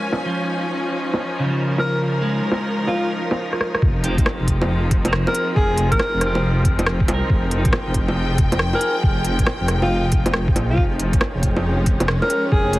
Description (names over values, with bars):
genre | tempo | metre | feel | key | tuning
future garage | 138 BPM | 4/4 | swing 64% on 16ths | F minor | A4 = 440 Hz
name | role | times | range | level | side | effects
clean electric guitar | accompaniment | 0.0-9.7 s | Db3 to Bb4 | -27 LUFS | right 1 dB | sidechain pumping, tape echo
clear studio string section | sustained chords | 0.0-12.8 s | F3 to Ab5 | -26 LUFS | left 1 dB | sidechain pumping
flickering grainy texture | texture | 0.0-12.8 s | F4 to G5 | -35 LUFS | right 1 dB | built-in reverb
organic electronic drum kit | drums | 0.1-12.8 s | bongos, hi-hat, rim click | -23 LUFS | equal | low-pass filter on perc, low-pass filter on snare, low-pass filter on hats, low-pass filter on room
breathy alto saxophone | melody | 1.8-12.8 s | F4 to Bb4 | -25 LUFS | left 1 dB | tape echo
dark detuned saw bass | bass | 3.8-12.8 s | F1 to C2 | -21 LUFS | equal | tube saturation, sidechain pumping
electronic kick drum | drums | 3.8-12.6 s | none | -19 LUFS | equal | none
room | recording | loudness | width
light reverb | heavily compressed radio sound, multiband compression, vinyl crackle | -17 LUFS | side -18 dB against mid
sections
0.0-3.8 A section; 3.8-12.8 B section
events
drum fill 3.5-3.8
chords
0.0 Dbadd9/F; 3.8 Fm7; 10.8 Dbadd9/F